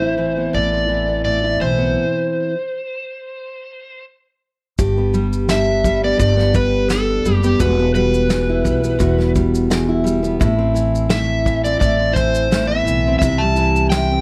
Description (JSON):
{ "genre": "acoustic pop", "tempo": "85 BPM", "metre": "4/4", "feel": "swing 55% on 16ths", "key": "G major", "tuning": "A4 = 440 Hz", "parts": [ { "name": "overdriven slide guitar", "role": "melody", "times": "0.0-14.2 s", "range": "G4 to A5", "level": "-22 LUFS", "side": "equal", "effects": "none" }, { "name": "fingerpicked steel-string acoustic guitar", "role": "accompaniment", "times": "0.0-14.2 s", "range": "E2 to G4", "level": "-21 LUFS", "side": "equal", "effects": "none" }, { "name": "upright bass", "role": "bass", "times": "0.0-14.2 s", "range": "E1 to C2", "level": "-23 LUFS", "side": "equal", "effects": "none" }, { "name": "vintage brush drum kit", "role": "drums", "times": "4.8-14.1 s", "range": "kick drum, shaker, snare drum", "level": "-24 LUFS", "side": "equal", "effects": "none" } ], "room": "light reverb", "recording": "none", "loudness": "-17 LUFS", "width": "mono", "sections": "0.0-4.8 A section; 4.8-14.2 B section", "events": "stop 2.0-4.8", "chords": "0.0 Amadd9; 2.0 N.C.; 4.8 G; 7.6 Emadd9; 10.4 Amadd9; 13.2 C" }